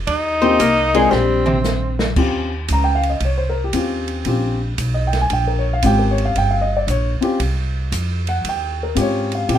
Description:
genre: jazz, small-group swing and bop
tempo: 115 BPM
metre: 4/4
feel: swing 67% on 8ths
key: Eb mixolydian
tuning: A4 = 440 Hz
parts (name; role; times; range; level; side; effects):
- upright bass; bass; 0.0-9.6 s; G1 to Bb2; -20 LUFS; right 1 dB; none
- breathy tenor saxophone; second line; 0.1-2.0 s; C4 to Eb4; -18 LUFS; left 1 dB; none
- open jazz drum kit; drums; 0.1-9.6 s; crash cymbal, hi-hat, kick drum, ride cymbal, snare drum, toms; -26 LUFS; right 2 dB; none
- archtop guitar, miked and amplified; melody; 0.4-1.6 s; C3 to C5; -18 LUFS; left 3 dB; none
- dark baby grand piano; accompaniment; 0.4-9.6 s; Ab3 to Bb5; -20 LUFS; left 2 dB; none
room: light reverb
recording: minimal, uncompressed stereo recording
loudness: -16 LUFS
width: side -10 dB against mid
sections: 0.0-2.2 A section; 2.2-9.6 B section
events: drum fill 1.1-2.2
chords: 0.1 Eb13; 1.1 Bbsus2; 2.2 Eb13

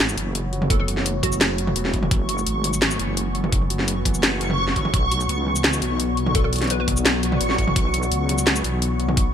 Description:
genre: half-time drum and bass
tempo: 170 BPM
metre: 4/4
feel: half-time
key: F# minor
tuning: A4 = 438 Hz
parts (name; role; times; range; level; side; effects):
- deep dark ambient pad; sustained chords; 0.3-9.3 s; A3 to F#5; -29 LUFS; left 3 dB; chorus, built-in reverb, sidechain pumping
- felt-muted upright piano; arpeggios; 0.0-9.3 s; F#2 to F#4; -30 LUFS; right 2 dB; ping-pong delay
- deep soft wobble bass; bass; 0.0-9.3 s; E1 to C#2; -25 LUFS; equal; chorus, tube saturation
- drum and bass drum kit; drums; 0.0-9.3 s; hi-hat, shaker, snare drum, toms; -22 LUFS; equal; none
- backwards swelling texture; texture; 1.2-9.3 s; C#6; -29 LUFS; equal; built-in reverb, ensemble chorus
- hollow square pluck; melody; 0.7-1.7, 6.3-6.8 s; F#4 to B4; -31 LUFS; equal; wide subtle chorus, ping-pong delay
- electronic kick drum; drums; 0.7-9.2 s; none; -22 LUFS; equal; none
room: light reverb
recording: bright 1980s-style digital production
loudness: -19 LUFS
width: side -9 dB against mid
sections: 0.0-9.3 A section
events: none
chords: 0.0 F#m; 4.9 Bm

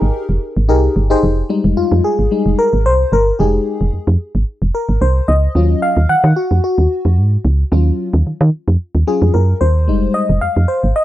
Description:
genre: early-eighties boogie funk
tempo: 111 BPM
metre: 4/4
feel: straight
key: F phrygian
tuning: A4 = 440 Hz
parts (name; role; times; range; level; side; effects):
- FM electric piano with soft pad layer; accompaniment; 0.0-11.0 s; Gb3 to Gb5; -16 LUFS; left 2 dB; chorus
- woody FM bass; bass; 0.0-10.9 s; F1 to Eb3; -13 LUFS; right 1 dB; none
room: little or no reverb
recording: dry, close 1970s-style studio recording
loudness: -12 LUFS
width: side -14 dB against mid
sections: 0.0-1.2 A section; 1.2-11.0 B section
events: FM electric piano solo 1.2-11.0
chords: 0.0 Fm11 (rootless); 1.2 Fm9; 5.6 Ebm9; 9.9 Fm9

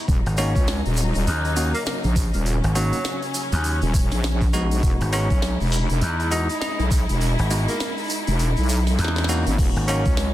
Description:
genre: glitch hop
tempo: 101 BPM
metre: 4/4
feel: swing 60% on 16ths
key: Eb phrygian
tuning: A4 = 440 Hz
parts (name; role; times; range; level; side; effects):
- rich studio string section; sustained chords; 0.0-10.3 s; Db3 to E4; -30 LUFS; left 1 dB; sidechain pumping
- wobble bass; bass; 0.1-10.3 s; Eb1 to Db2; -22 LUFS; equal; chorus, overdrive
- electronic kick drum; drums; 0.1-10.2 s; none; -21 LUFS; equal; none
- glitchy drum kit; drums; 0.1-10.3 s; crash cymbal, hi-hat, rim click, snare drum; -31 LUFS; equal; soft clipping on snare
- tube shaker; percussion; 0.1-10.3 s; none; -35 LUFS; right 4 dB; none
- gritty slap bass; bass; 0.3-10.0 s; Ab1 to E2; -22 LUFS; equal; overdrive, tube saturation
- breathy tenor saxophone; melody; 0.4-10.3 s; Gb3 to D#4; -31 LUFS; equal; tape echo
- bell-like tine electric piano; stabs; 0.4-10.0 s; Ab3 to Gb4; -30 LUFS; equal; sidechain pumping, tape echo
room: little or no reverb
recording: dense, heavily limited modern master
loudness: -19 LUFS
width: side -14 dB against mid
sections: 0.0-10.3 A section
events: kick drops out 7.2-9.6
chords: 0.1 Ebm7; 4.8 Emaj7; 9.6 Ebm7

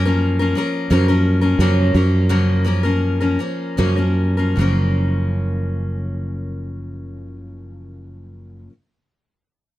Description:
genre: acoustic folk duo or small band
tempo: 74-91 BPM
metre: 4/4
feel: straight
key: F# major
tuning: A4 = 440 Hz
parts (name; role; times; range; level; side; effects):
- picked steel-string acoustic guitar; accompaniment; 0.0-8.7 s; F#2 to A#4; -21 LUFS; left 2 dB; none
- sustaining fretless electric bass; bass; 0.0-8.7 s; F#1 to F#2; -18 LUFS; right 1 dB; none
room: little or no reverb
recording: close, detailed microphones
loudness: -16 LUFS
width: side -15 dB against mid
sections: 0.0-4.6 A section; 4.6-7.8 B section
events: slowing down 0.0-4.6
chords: 0.0 F#maj7

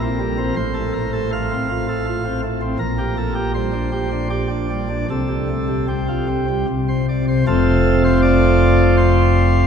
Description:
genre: classical, chorale-style piece for pipe organ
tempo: 75-83 BPM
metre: 3/4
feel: rubato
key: F major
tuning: A4 = 440 Hz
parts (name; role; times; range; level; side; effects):
- chamber organ, principal chorus; solo; 0.0-9.7 s; F1 to F5; -16 LUFS; equal; none
room: wet cathedral reverb, RT60 6.3 s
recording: minimal, uncompressed stereo recording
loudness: -16 LUFS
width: side -7 dB against mid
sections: 0.0-7.5 A section; 7.5-9.7 B section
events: none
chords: 0.0 C7(no3)/Bb; 0.6 F/A; 2.8 Gm/Bb; 5.1 Csus4; 6.7 Csus2; 7.5 F

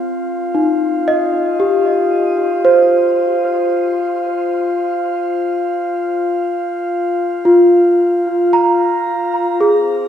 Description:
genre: ambient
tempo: 56 BPM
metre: 3/4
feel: straight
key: unclear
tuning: A4 = 440 Hz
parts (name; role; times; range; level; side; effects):
- celesta; arpeggios; 0.0-10.1 s; C4 to Bb5; -14 LUFS; equal; diffuse ambient delay, shimmer reverb
- glass harmonica; texture; 0.0-10.1 s; C4 to F5; -17 LUFS; left 2 dB; shimmer reverb
room: wet concert hall reverb, RT60 1.8 s, small room ambience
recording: none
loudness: -13 LUFS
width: side -9 dB against mid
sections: 0.0-10.1 A section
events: none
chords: 0.0 F5; 3.2 Fsus24

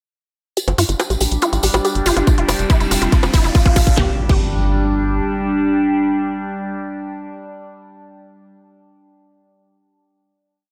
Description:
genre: psychedelic trance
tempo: 141 BPM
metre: 4/4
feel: straight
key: unclear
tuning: A4 = 440 Hz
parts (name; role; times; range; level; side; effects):
- overtone-sweeping drone; sustained chords; 1.3-7.0 s; G3 to D4; -25 LUFS; equal; chorus, built-in reverb, phaser, sidechain pumping
- unison pluck; riff; 0.6-4.4 s; E4 to G4; -24 LUFS; equal; cassette tape, sidechain pumping, digital delay
- garage drum kit; drums; 0.6-4.4 s; bongos, crash cymbal, hi-hat, snare drum; -26 LUFS; equal; none
- tambourine; percussion; 0.6-4.0 s; none; -28 LUFS; equal; none
- riser and impact; sound effects; 1.9-7.1 s; none; -30 LUFS; equal; none
- warbly tape-like pad; texture; 0.6-7.2 s; C4 to G5; -27 LUFS; equal; chorus, built-in reverb, sidechain pumping
- tight sequencer bass; bass; 0.7-5.2 s; F1 to G2; -22 LUFS; equal; none
- electronic kick drum; drums; 2.3-4.4 s; none; -16 LUFS; equal; none
room: light reverb, digital ambience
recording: none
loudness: -17 LUFS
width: mono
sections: 0.6-4.0 build; 4.0-7.4 final chord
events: build-up 0.6-4.0; filter sweep on synth arpeggio sound 0.6-4.0; riser 1.9-4.0; drum fill 2.3-4.0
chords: 0.6 G5; 2.3 F5; 4.0 G5

